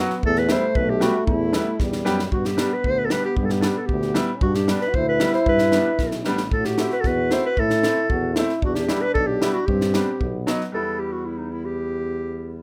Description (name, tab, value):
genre	klezmer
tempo	114 BPM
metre	2/4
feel	straight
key	G major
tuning	A4 = 441 Hz
part	trombone with bucket mute	second line	0.0-10.7 s	G3 to F#4	-28 LUFS	equal	none
part	bright upright piano	accompaniment	0.0-12.6 s	F#3 to G4	-29 LUFS	equal	none
part	mellow tuba	bass	0.0-12.6 s	A1 to A2	-29 LUFS	equal	none
part	crisp fusion drum kit	drums	0.1-10.7 s	kick drum, snare drum	-28 LUFS	equal	none
part	mellow clarinet	melody	0.3-12.6 s	D#4 to C5	-26 LUFS	equal	none
room	light reverb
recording	none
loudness	-22 LUFS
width	mono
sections	0.0-2.3 A section; 2.3-10.7 B section; 10.7-12.6 C section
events	drum fill 1.8-2.3, 6.0-6.5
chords	0.2 Em; 2.3 G; 6.5 Am; 8.6 Em; 9.7 G; 10.2 B; 10.7 Em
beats	| 0.24 0.76 | 1.28 1.80 | 2.32 2.84 | 3.37 3.89 | 4.42 4.94 | 5.47 5.99 | 6.52 7.05 | 7.57 8.10 | 8.62 9.15 | 9.68 10.20 | 10.73 11.26 | 11.78 12.31